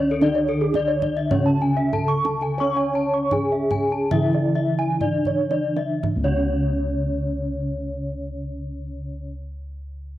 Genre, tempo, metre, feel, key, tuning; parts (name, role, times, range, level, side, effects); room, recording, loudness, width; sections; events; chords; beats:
Balinese gamelan; 55-118 BPM; 4/4; straight; C# pelog; A4 = 444 Hz
gamelan-type bronze metallophone; melody; 0.0-9.3 s; C#4 to C#5; -25 LUFS; equal; cassette tape
gamelan-type bronze metallophone; accompaniment; 0.0-9.3 s; C#3 to C#4; -28 LUFS; equal
gamelan-type bronze metallophone; arpeggios; 0.0-9.3 s; A4-20c to C#6; -27 LUFS; left 5 dB
gamelan-type bossed gongs; bass; 0.0-9.3 s; C#2 to C#5; -27 LUFS; equal
kendang; percussion; 0.1-6.5 s; -28 LUFS; right 3 dB
gamelan-type bronze metallophone; arpeggios; 0.4-9.3 s; G#4-30c to C#6; -29 LUFS; right 5 dB
moderate spring reverb, RT60 1.8 s, studio ambience; home recording on cassette; -20 LUFS; side -14 dB against mid
0.0-6.0 A section; 6.0-10.2 B section
slowing down 0.2-6.0; drum fill 5.3-6.0
| 0.22 0.75 1.31 1.93 | 2.59 3.32 4.12 5.02 | 6.04 7.13 8.22 9.31